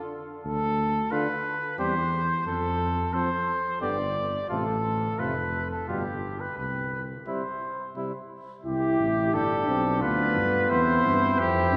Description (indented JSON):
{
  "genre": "classical, brass quintet",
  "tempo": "88 BPM",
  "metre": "3/4",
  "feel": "straight",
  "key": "C major",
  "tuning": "A4 = 440 Hz",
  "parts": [
    { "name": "clear trumpet", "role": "melody", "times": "0.0-11.8 s", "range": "G4 to D5", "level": "-30 LUFS", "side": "equal", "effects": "none" },
    { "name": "dark tuba", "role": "bass", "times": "0.4-11.8 s", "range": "F1 to G2", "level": "-33 LUFS", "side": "equal", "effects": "none" },
    { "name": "warm trumpet", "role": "second line", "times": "1.1-11.8 s", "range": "E4 to A4", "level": "-36 LUFS", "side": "equal", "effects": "none" },
    { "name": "mellow euphonium", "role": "accompaniment", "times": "1.1-11.8 s", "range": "B2 to E4", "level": "-34 LUFS", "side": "equal", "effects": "none" },
    { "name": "warm French horn", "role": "accompaniment", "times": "1.1-11.8 s", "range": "G3 to E4", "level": "-38 LUFS", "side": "equal", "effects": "none" }
  ],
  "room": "wet church reverb, RT60 3.3 s",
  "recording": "recorded in a church or concert hall",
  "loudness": "-27 LUFS",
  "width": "mono",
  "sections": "0.0-8.7 A section; 8.7-11.8 B section",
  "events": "none",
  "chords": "0.4 Bm/D; 1.8 C/E; 2.5 F; 3.8 G; 4.5 F/A; 5.2 F; 5.9 G7; 6.6 C5; 8.7 C; 10.0 G7/D; 10.7 C/E"
}